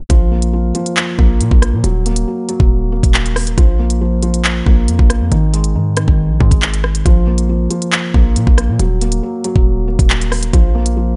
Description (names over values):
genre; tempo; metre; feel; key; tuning
hip hop, drill; 138 BPM; 4/4; half-time; unclear; A4 = 440 Hz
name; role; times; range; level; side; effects
felt-muted upright piano; accompaniment; 0.0-11.2 s; Eb3 to Bb3; -21 LUFS; equal; none
hard-hitting 808-style bass; bass; 0.0-11.2 s; Eb1 to Bb2; -18 LUFS; equal; none
drill drum kit; drums; 0.1-11.0 s; handclaps, hi-hat, kick drum, rim click; -16 LUFS; equal; none
room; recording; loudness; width
digital ambience; tape stop, nothing above 10.9 kHz; -14 LUFS; mono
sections
0.1-11.2 A section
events
none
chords
0.1 Bb5; 1.8 Ebm; 3.6 Bb5; 5.3 Ab5; 7.1 Bb5; 8.8 Ebm; 10.5 Bb5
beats
| 0.10 0.53 0.97 1.40 | 1.84 2.27 2.71 3.14 | 3.58 4.01 4.45 4.88 | 5.32 5.75 6.19 6.62 | 7.06 7.49 7.92 8.36 | 8.79 9.23 9.66 10.10 | 10.53 10.97